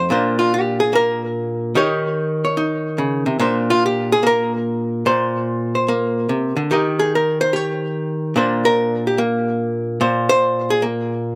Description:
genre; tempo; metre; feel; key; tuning
solo jazz; 146 BPM; 4/4; swing 67% on 8ths; Bb major; A4 = 441 Hz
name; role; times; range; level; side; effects
archtop guitar, miked and amplified; solo; 0.0-11.4 s; F2 to Eb5; -19 LUFS; equal; slapback echo
room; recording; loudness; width
little or no reverb; recorded outdoors, with no room sound; -19 LUFS; mono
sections
0.1-11.4 A section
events
hollow-body jazz guitar solo 0.1-11.4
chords
0.1 Bbadd9; 1.7 Eb7; 3.4 Bbadd9; 6.7 Eb; 8.3 Bbadd9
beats
| 0.10 0.51 0.92 1.33 | 1.75 2.16 2.57 2.98 | 3.40 3.81 4.22 4.63 | 5.05 5.46 5.87 6.28 | 6.70 7.11 7.52 7.93 | 8.35 8.76 9.17 9.58 | 9.99 10.40 10.82 11.23

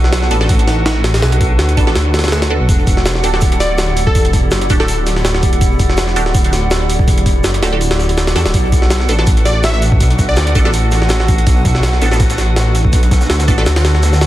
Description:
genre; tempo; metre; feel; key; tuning
drum and bass, jungle; 164 BPM; 4/4; swing 54% on 16ths; E minor; A4 = 443 Hz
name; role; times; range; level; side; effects
detuned saw bass; bass; 0.0-14.3 s; D1 to E2; -15 LUFS; equal; tube saturation
jungle sampler-style drum kit; drums; 0.0-14.3 s; hi-hat, kick drum, snare drum; -14 LUFS; equal; none
filtered dub chord stab; stabs; 0.3-13.6 s; B3 to A4; -23 LUFS; right 2 dB; phaser, dub echo
crunchy breakbeat drum kit; drums; 2.7-14.3 s; hi-hat, shaker, snare drum; -28 LUFS; equal; high-pass filter on hats, high-pass filter on snare, high-pass filter on perc, high-pass filter on room
plucky unison lead; melody; 3.6-4.9, 9.5-10.7 s; A4 to E5; -21 LUFS; equal; dub echo
room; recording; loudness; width
little or no reverb; dense, heavily limited modern master, vinyl crackle; -11 LUFS; side -14 dB against mid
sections
0.0-14.3 A section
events
none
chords
0.0 Bm7; 2.7 Em11; 8.5 Bm7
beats
0.13 0.49 0.86 | 1.23 1.59 1.96 2.32 | 2.69 3.05 3.42 3.79 | 4.15 4.52 4.88 5.25 | 5.62 5.98 6.35 6.71 | 7.08 7.44 7.81 8.18 | 8.54 8.91 9.27 9.64 | 10.01 10.37 10.74 11.10 | 11.47 11.84 12.20 12.57 | 12.93 13.30 13.66 14.03

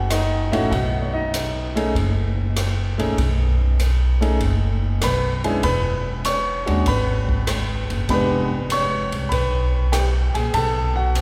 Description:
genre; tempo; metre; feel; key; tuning
jazz piano trio; 98 BPM; 4/4; swing 69% on 8ths; B mixolydian; A4 = 445 Hz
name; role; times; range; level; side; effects
clear concert grand piano; melody; 0.0-11.2 s; G#3 to C#6; -25 LUFS; equal; none
upright bass; bass; 0.0-11.2 s; E1 to D#2; -23 LUFS; equal; none
open jazz drum kit; drums; 0.1-11.2 s; hi-hat, kick drum, ride cymbal, rim click; -30 LUFS; equal; none
room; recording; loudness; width
wet church reverb, RT60 3.5 s; recorded in a church or concert hall, faint mains hum; -21 LUFS; mono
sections
0.0-11.2 A section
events
none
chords
0.0 B; 5.6 E6; 8.1 Fdim; 10.5 B7(no3)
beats
0.10 | 0.72 1.33 1.95 2.56 | 3.18 3.79 4.41 5.02 | 5.64 6.25 6.87 7.48 | 8.09 8.71 9.32 9.93 | 10.54 11.15

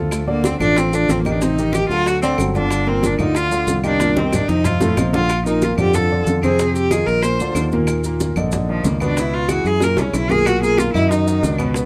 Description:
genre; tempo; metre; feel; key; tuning
Afro-Cuban jazz; 186 BPM; 4/4; straight; G minor; A4 = 440 Hz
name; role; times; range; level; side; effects
warm concert grand piano; accompaniment; 0.0-11.9 s; A2 to D5; -24 LUFS; equal; none
fingered electric bass; bass; 0.0-11.9 s; G1 to Gb2; -23 LUFS; equal; none
rich cello; melody; 0.1-11.7 s; F3 to C5; -22 LUFS; equal; none
bongos; percussion; 0.1-11.9 s; none; -28 LUFS; equal; none
claves; percussion; 0.1-11.8 s; none; -36 LUFS; equal; none
congas; percussion; 0.1-11.9 s; none; -28 LUFS; equal; none
maracas; percussion; 0.1-11.9 s; none; -36 LUFS; equal; none
room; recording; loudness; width
light reverb; none; -18 LUFS; mono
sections
0.0-5.3 A section; 5.3-11.9 A section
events
cello solo 0.0-11.9; drum fill 4.0-5.3, 9.8-10.5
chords
0.1 Dm; 1.4 Am7b5; 2.1 D; 2.7 Gm7; 4.0 Cm7; 4.6 F7; 5.3 Bbmaj9; 6.6 F7sus4; 7.2 Bbadd9; 7.9 Eb5; 9.2 Dbm7; 9.8 Gb7; 10.5 Bmaj9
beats
| 0.12 0.44 0.76 1.09 | 1.41 1.74 2.06 2.38 | 2.71 3.03 3.35 3.68 | 4.00 4.32 4.65 4.97 | 5.29 5.62 5.94 6.26 | 6.59 6.91 7.23 7.56 | 7.88 8.20 8.53 8.85 | 9.17 9.49 9.82 10.14 | 10.46 10.79 11.11 11.43 | 11.75

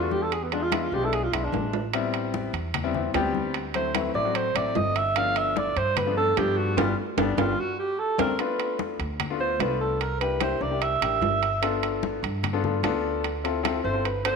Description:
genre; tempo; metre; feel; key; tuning
Afro-Cuban jazz; 149 BPM; 4/4; straight; G mixolydian; A4 = 440 Hz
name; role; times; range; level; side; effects
breathy alto saxophone; melody; 0.0-14.4 s; A3 to F5; -26 LUFS; right 3 dB; none
warm grand piano; accompaniment; 0.0-14.4 s; F3 to Bb4; -28 LUFS; left 8 dB; none
upright bass; bass; 0.0-14.4 s; G1 to G2; -32 LUFS; right 1 dB; none
congas; percussion; 0.1-14.4 s; none; -34 LUFS; left 10 dB; none
timbales; percussion; 0.3-14.4 s; none; -31 LUFS; right 12 dB; none
room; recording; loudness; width
moderate echo chamber reverb, RT60 1.8 s, small room ambience; 1960s-style stereo with parts hard left and right; -23 LUFS; side -5 dB against mid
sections
0.0-8.4 A section; 8.4-14.4 A section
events
alto saxophone solo 0.0-14.4; drum fill 1.5-1.9, 8.2; band accent 6.8-8.4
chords
0.3 E7b9; 1.9 Am7; 3.5 D7; 5.2 G7; 7.6 D5; 8.4 Bm7b5; 10.0 C7; 11.6 G7; 13.2 Dm7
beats
| 0.32 0.72 1.13 1.53 | 1.93 2.34 2.74 3.14 | 3.55 3.95 4.35 4.76 | 5.16 5.56 5.97 6.37 | 6.77 7.18 7.58 7.99 | 8.39 8.79 9.20 9.60 | 10.01 10.41 10.81 11.22 | 11.62 12.03 12.43 12.84 | 13.24 13.64 14.05

